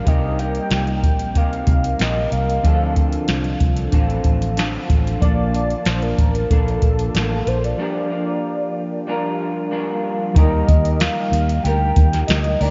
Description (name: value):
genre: indie pop, bedroom pop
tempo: 93 BPM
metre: 4/4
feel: straight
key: unclear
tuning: A4 = 441 Hz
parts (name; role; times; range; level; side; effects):
- warm velvety synth lead; melody; 0.0-12.7 s; A4 to G5; -28 LUFS; equal; subtle chorus, diffuse ambient delay
- electric guitar through a small old amp; accompaniment; 0.0-12.7 s; C3 to Bb4; -28 LUFS; equal; lush chorus, vibrato effect
- warbly lo-fi synth keys; accompaniment; 0.0-12.7 s; F3 to A5; -30 LUFS; equal; chorus, cassette tape
- vintage muted fingered electric bass; bass; 0.1-12.7 s; A1 to Eb2; -24 LUFS; equal; none
- soft vintage rhythm box; drums; 0.1-12.7 s; hi-hat, kick drum, snare drum; -20 LUFS; equal; vintage 12-bit sampler grit
room: moderate huge ambient reverb, RT60 3.9 s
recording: dreamy mix soaked in reverb, nothing above 7.5 kHz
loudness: -19 LUFS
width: mono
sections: 0.0-10.4 A section; 10.4-12.7 B section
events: break 7.8-10.4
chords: 0.1 Cm7; 2.6 Dm7; 5.2 Bbmaj7; 7.8 Gm7; 10.4 Ebmaj7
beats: | 0.07 0.71 1.36 2.00 | 2.64 3.29 3.93 4.57 | 5.22 5.86 6.50 7.15 | 7.79 8.43 9.08 9.72 | 10.36 11.01 11.65 12.29